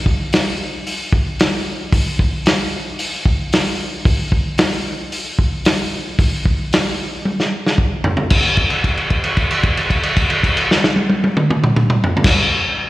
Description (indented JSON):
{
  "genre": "rock",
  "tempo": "113 BPM",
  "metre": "4/4",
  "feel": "straight",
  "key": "none",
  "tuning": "none",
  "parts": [
    { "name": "vintage drum kit", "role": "drums", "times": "0.1-12.4 s", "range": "crash cymbal, hi-hat, kick drum, snare drum, toms", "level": "-14 LUFS", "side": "equal", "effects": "none" }
  ],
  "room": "light reverb",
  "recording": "live gig heard through the venue's PA, recital hall reverb",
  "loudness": "-14 LUFS",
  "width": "side -17 dB against mid",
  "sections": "0.0-8.3 A section; 8.3-12.6 B section",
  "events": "drum fill 7.3-8.3; held note 8.3-12.2",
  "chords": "none",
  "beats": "0.33 0.86 1.39 | 1.93 2.46 2.99 3.52 | 4.06 4.59 5.12 5.66 | 6.19 6.72 7.25 7.79 | 8.32 8.85 9.38 9.91 | 10.44 10.97 11.50 12.03"
}